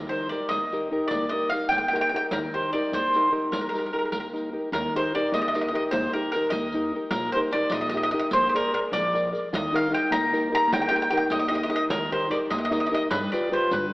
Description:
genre	italian folk, Italian serenade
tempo	100 BPM (dotted quarters)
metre	6/8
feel	straight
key	Eb major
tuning	A4 = 444 Hz
part	nylon-string guitar	accompaniment	0.0-13.9 s	D3 to D5	-27 LUFS	left 1 dB	none
part	upright bass	bass	0.0-13.9 s	Bb1 to G2	-36 LUFS	equal	none
part	mandolin	melody	0.1-13.9 s	Bb4 to Bb5	-25 LUFS	equal	none
part	riq	percussion	0.3-13.9 s	none	-36 LUFS	right 1 dB	none
room	wet concert hall reverb, RT60 2.0 s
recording	AM radio sound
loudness	-22 LUFS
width	side -21 dB against mid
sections	0.0-4.7 A section; 4.7-13.9 A section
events	none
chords	0.0 Eb; 7.1 Eb/Bb; 8.3 Bb7; 9.5 Eb; 13.1 G7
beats	0.52 | 1.12 1.72 | 2.31 2.91 | 3.52 4.12 | 4.72 5.33 | 5.92 6.52 | 7.12 7.72 | 8.32 8.92 | 9.53 10.13 | 10.73 11.32 | 11.92 12.51 | 13.11 13.71

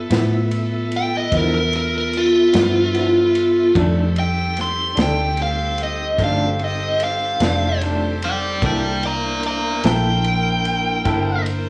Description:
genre	slow blues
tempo	49 BPM (dotted quarters)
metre	12/8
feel	straight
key	C mixolydian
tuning	A4 = 438 Hz
part	brilliant horn section	sustained chords	0.0-11.7 s	E4 to E5	-34 LUFS	equal	none
part	tonewheel organ	sustained chords	0.0-11.7 s	G3 to E5	-30 LUFS	equal	overdrive, chorus vibrato, slow rotary speaker
part	vintage muted fingered electric bass	bass	0.0-11.7 s	F1 to A2	-25 LUFS	equal	none
part	electric guitar through a small old amp	accompaniment	0.1-11.3 s	F2 to A4	-26 LUFS	equal	tremolo
part	vintage drum kit	drums	0.1-11.6 s	kick drum, ride cymbal, snare drum	-28 LUFS	equal	none
part	biting lead guitar	melody	1.0-11.4 s	F4 to C6	-22 LUFS	equal	overdrive
room	moderate studio reverb, RT60 0.6 s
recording	worn, warbling old tape, cassette tape, warbly pitch drift, studio reverb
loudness	-19 LUFS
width	mono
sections	0.0-11.7 A section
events	lead electric guitar solo 0.0-11.7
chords	0.0 G13; 3.8 F13; 8.6 C13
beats	0.11 1.33 2.54 | 3.76 4.97 6.19 7.40 | 8.62 9.84 11.05

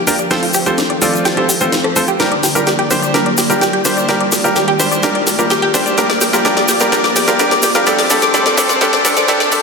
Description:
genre	progressive house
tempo	127 BPM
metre	4/4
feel	straight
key	unclear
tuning	A4 = 440 Hz
part	lush unison pad	sustained chords	0.0-9.6 s	D3 to D5	-21 LUFS	left 1 dB	chorus
part	analog pluck	arpeggios	0.0-9.6 s	D4 to G5	-17 LUFS	equal	lush chorus, dub echo
part	riser	sound effects	0.0-9.6 s	none	-26 LUFS	right 1 dB	none
part	bright baby grand piano	stabs	0.1-9.6 s	G3 to D5	-16 LUFS	equal	low-pass filter, dub echo
part	house drum kit	drums	0.1-9.6 s	hi-hat, rim click, snare drum	-18 LUFS	left 1 dB	overdrive
part	egg shaker	percussion	0.1-9.6 s	none	-21 LUFS	left 3 dB	none
room	wet lush hall reverb, RT60 1.9 s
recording	dense, heavily limited modern master, high-pass filter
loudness	-11 LUFS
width	side -4 dB against mid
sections	0.0-9.6 A section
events	build-up 0.0-9.6; drum fill 0.0-9.6; riser 0.0-9.6; filter sweep on synth pluck 0.0-9.6; filter sweep on analog synth pad 0.0-9.6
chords	0.3 F; 2.2 Gm; 4.1 Ebmaj7; 6.0 Bb6; 7.9 F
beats	| 0.31 0.78 1.25 1.73 | 2.20 2.67 3.14 3.62 | 4.09 4.56 5.03 5.50 | 5.98 6.45 6.92 7.39 | 7.87 8.34 8.81 9.28

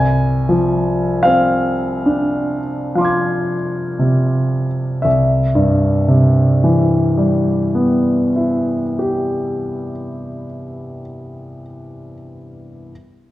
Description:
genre	classical, impressionist solo piano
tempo	26-42 BPM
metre	3/4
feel	rubato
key	C major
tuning	A4 = 441 Hz
part	clear concert grand piano	solo	0.0-12.9 s	C2 to Ab6	-15 LUFS	equal	none
room	wet scoring stage reverb, RT60 1.7 s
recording	worn, warbling old tape, cassette tape, warbly pitch drift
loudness	-14 LUFS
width	side -15 dB against mid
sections	0.0-5.0 A section; 5.0-10.7 B section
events	slowing down 0.0-5.0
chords	0.0 Fm6/C; 5.0 Cmaj7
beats	1.23 2.94 | 5.04 6.92 8.78

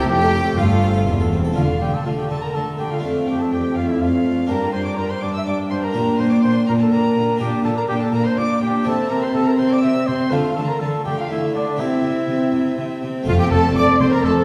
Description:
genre	classical, baroque-style concerto movement with solo episodes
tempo	123 BPM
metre	3/4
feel	straight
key	D minor, F major from 7.4 s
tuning	A4 = 439 Hz
part	rich chamber violin section	melody	0.0-14.3 s	D5 to D6	-35 LUFS	equal	none
part	warm trumpet	melody	0.0-14.4 s	D4 to E5	-26 LUFS	equal	none
part	warm chamber violin section	second line	0.0-14.4 s	F4 to E6	-31 LUFS	equal	none
part	harpsichord	accompaniment	0.0-14.4 s	E2 to C5	-23 LUFS	equal	none
part	rich chamber viola section	accompaniment	0.0-14.4 s	A3 to D4	-28 LUFS	equal	none
part	dark chamber double bass section	bass	0.0-1.6, 13.3-14.3 s	E1 to G1	-25 LUFS	equal	none
part	warm studio cello section	bass	0.0-14.3 s	E2 to D3	-28 LUFS	equal	none
room	wet recital hall reverb, RT60 1.7 s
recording	heard from further back in the room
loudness	-19 LUFS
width	mono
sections	0.0-1.6 A section; 1.6-13.3 B section; 13.3-14.4 A section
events	none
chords	0.1 F; 1.6 Dm; 3.0 Dm/F; 4.5 G5; 5.9 Gm/Bb; 7.4 Bbmaj13; 8.9 C; 10.3 Dm; 11.8 C; 13.3 F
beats	| 0.09 0.58 1.07 | 1.57 2.06 2.54 | 3.03 3.52 4.00 | 4.49 4.98 5.46 | 5.95 6.43 6.92 | 7.40 7.89 8.37 | 8.86 9.34 9.83 | 10.32 10.80 11.30 | 11.79 12.28 12.78 | 13.27 13.76 14.24

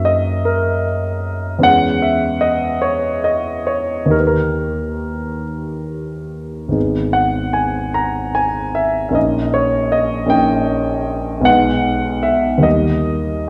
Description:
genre	classical, romantic character piece for solo piano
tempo	44-53 BPM (dotted quarters)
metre	6/8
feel	rubato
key	unclear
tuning	A4 = 440 Hz
part	warm grand piano	solo	0.0-13.5 s	G#1 to A#5	-17 LUFS	equal	none
room	wet recital hall reverb, RT60 1.6 s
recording	recorded in a church or concert hall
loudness	-17 LUFS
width	mono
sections	0.0-13.5 A section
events	none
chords	0.0 D#m/F#; 1.6 C#m/E; 4.1 D#; 6.8 G#m; 9.2 D#7/A#; 11.5 G#m/B; 12.7 D#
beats	0.47 | 1.64 2.83 | 4.13 5.45 | 6.76 7.97 | 9.16 10.33 | 11.47 12.65

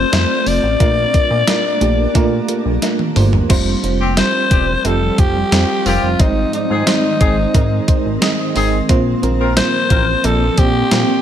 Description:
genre	1980s-style pop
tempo	89 BPM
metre	4/4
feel	straight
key	unclear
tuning	A4 = 444 Hz
part	raspy alto saxophone	melody	0.0-11.2 s	Eb4 to D5	-18 LUFS	left 2 dB	none
part	FM electric piano with tremolo	accompaniment	0.0-11.2 s	Ab2 to Eb5	-20 LUFS	right 5 dB	none
part	granular cloud pad	sustained chords	0.0-11.2 s	Eb3 to F4	-23 LUFS	left 2 dB	built-in reverb
part	chorused synth bass	bass	0.0-11.0 s	E1 to Bb2	-19 LUFS	equal	none
part	clean 12-bit digital drum machine	drums	0.1-11.1 s	crash cymbal, hi-hat, kick drum, snare drum, tambourine, toms	-16 LUFS	equal	gated reverb
part	cowbell	percussion	0.1-11.1 s	none	-32 LUFS	left 3 dB	none
part	mellow horn section	stabs	4.0-10.0 s	C4 to Bb4	-24 LUFS	left 3 dB	none
room	light reverb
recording	none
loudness	-12 LUFS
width	side -10 dB against mid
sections	0.0-3.5 A section; 3.5-11.2 B section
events	drum fill 2.8-3.5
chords	0.0 F; 0.8 Bbmaj7; 3.5 Fsus2; 6.2 Ab; 8.9 Bbsus2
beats	0.13 | 0.80 1.48 2.15 2.83 | 3.50 4.17 4.85 5.52 | 6.20 6.87 7.54 8.22 | 8.89 9.57 10.24 10.91

